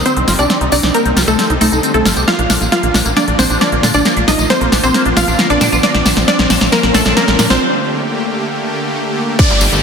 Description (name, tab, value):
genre	uplifting trance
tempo	135 BPM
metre	4/4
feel	straight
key	unclear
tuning	A4 = 440 Hz
part	wide unison pluck	melody	0.0-9.8 s	A3 to F5	-16 LUFS	equal	sidechain pumping, ping-pong delay
part	supersaw stab	second line	0.0-9.8 s	A4 to F5	-22 LUFS	equal	sidechain pumping, low-pass filter, digital delay
part	supersaw pad	sustained chords	0.0-9.8 s	D3 to G4	-20 LUFS	equal	sidechain pumping
part	liquid acid bass	arpeggios	0.0-7.6 s	Bb3 to G4	-20 LUFS	right 1 dB	phaser, lush chorus, sidechain pumping, digital delay
part	tight sequencer bass	bass	0.0-9.8 s	G1 to Bb2	-18 LUFS	equal	sidechain pumping
part	riser and downlifter	sound effects	1.2-9.8 s	none	-24 LUFS	equal	none
part	big-room dance drum kit	drums	0.1-9.8 s	crash cymbal, handclaps, hi-hat, snare drum	-16 LUFS	equal	overdrive
part	tambourine	percussion	0.1-9.8 s	none	-23 LUFS	left 4 dB	none
part	electronic kick drum	drums	9.4-9.5 s	none	-12 LUFS	equal	overdrive
room	wet lush hall reverb, RT60 1.6 s, digital ambience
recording	dense, heavily limited modern master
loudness	-10 LUFS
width	side -6 dB against mid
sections	0.0-9.4 A section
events	build-up 0.0-9.4; drum fill 0.0-7.6; filter sweep on acid bass 0.0-9.4; filter sweep on supersaw synth 0.0-9.4; break 7.6-9.4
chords	0.0 Cmadd9; 2.3 Bb; 7.6 Gmadd9